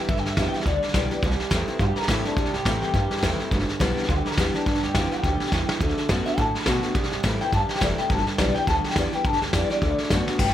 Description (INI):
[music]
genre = rockabilly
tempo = 209 BPM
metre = 4/4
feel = swing 58% on 8ths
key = G major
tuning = A4 = 440 Hz
[part]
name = electric guitar through a small old amp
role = melody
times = 0.0-10.5 s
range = D4 to B5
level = -28 LUFS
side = left 2 dB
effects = phaser, tape echo
[part]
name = picked steel-string acoustic guitar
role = accompaniment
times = 0.0-10.5 s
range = G2 to G4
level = -29 LUFS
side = left 4 dB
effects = none
[part]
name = electric guitar through a small old amp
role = riff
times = 0.0-10.4 s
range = G2 to B3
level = -30 LUFS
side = right 5 dB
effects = none
[part]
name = upright bass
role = bass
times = 0.1-10.5 s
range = F1 to B2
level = -28 LUFS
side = equal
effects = none
[part]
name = vintage brush drum kit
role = drums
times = 0.1-10.5 s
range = crash cymbal, hi-hat, kick drum, snare drum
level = -25 LUFS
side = equal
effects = none
[sound]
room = light reverb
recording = none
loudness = -21 LUFS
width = side -11 dB against mid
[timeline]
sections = 0.0-10.4 A section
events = drum fill 5.5, 10.3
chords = 0.0 G; 1.2 C; 3.5 G; 5.8 D; 7.0 C; 8.1 G; 9.8 D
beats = | 0.09 0.37 0.66 0.94 | 1.23 1.52 1.80 2.09 | 2.37 2.66 2.95 3.23 | 3.52 3.80 4.09 4.38 | 4.66 4.95 5.24 5.52 | 5.81 6.10 6.38 6.67 | 6.96 7.24 7.53 7.82 | 8.10 8.39 8.68 8.96 | 9.25 9.54 9.82 10.11 | 10.40